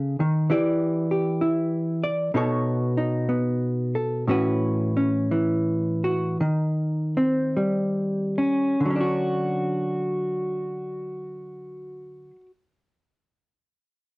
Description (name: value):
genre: solo jazz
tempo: 46-66 BPM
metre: 4/4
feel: swing 66% on 8ths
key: D major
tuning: A4 = 440 Hz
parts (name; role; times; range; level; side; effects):
- hollow-body jazz guitar; solo; 0.0-12.5 s; A2 to Eb5; -22 LUFS; equal; cassette tape
room: moderate studio reverb, RT60 0.5 s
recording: home recording on cassette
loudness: -22 LUFS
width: side -25 dB against mid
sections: 0.5-8.8 A section; 8.8-14.0 B section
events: slowing down 0.5-8.8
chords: 0.0 B7 (rootless); 0.5 Em7; 2.3 B9; 4.3 A69; 6.4 Eb6; 8.8 Dmaj7